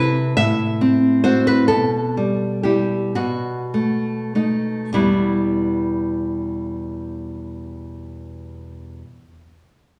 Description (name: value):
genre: romantic piece for solo classical guitar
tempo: 31-48 BPM (dotted quarters)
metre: 6/8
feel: rubato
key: E minor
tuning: A4 = 440 Hz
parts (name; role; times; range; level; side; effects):
- nylon-string guitar; solo; 0.0-9.0 s; E2 to E5; -20 LUFS; equal; none
room: wet recital hall reverb, RT60 1.5 s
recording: recorded in a church or concert hall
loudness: -20 LUFS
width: mono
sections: 0.0-4.9 A section; 4.9-8.2 B section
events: slowing down 0.0-4.9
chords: 0.4 F#m7b5/A; 1.7 Em/B; 3.2 B7; 4.9 Em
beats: 0.37 | 1.69 3.16 | 4.94 6.57